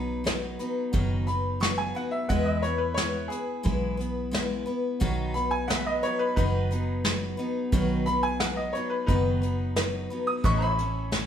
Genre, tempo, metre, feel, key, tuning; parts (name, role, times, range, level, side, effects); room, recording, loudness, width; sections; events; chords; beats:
honky-tonk and classic country; 88 BPM; 4/4; straight; B mixolydian; A4 = 440 Hz
bright upright piano; melody; 0.0-11.3 s; D#4 to D#6; -30 LUFS; equal
picked steel-string acoustic guitar; accompaniment; 0.0-11.3 s; A2 to B4; -30 LUFS; left 2 dB
pedal steel guitar; sustained chords; 0.0-11.3 s; B4 to E5; -36 LUFS; right 4 dB
vintage muted fingered electric bass; bass; 0.0-11.3 s; F#1 to E2; -30 LUFS; right 1 dB
soft brush drum kit; drums; 0.3-11.3 s; hi-hat, kick drum, snare drum; -28 LUFS; equal
moderate studio reverb, RT60 0.9 s; band playing live in one room; -24 LUFS; side -9 dB against mid
0.0-11.3 A section
upright piano solo 0.0-11.3
0.0 B; 2.3 E; 5.0 B; 10.4 A
0.27 0.94 1.62 | 2.30 2.98 3.66 4.34 | 5.02 5.70 6.37 7.05 | 7.73 8.41 9.09 9.77 | 10.45 11.12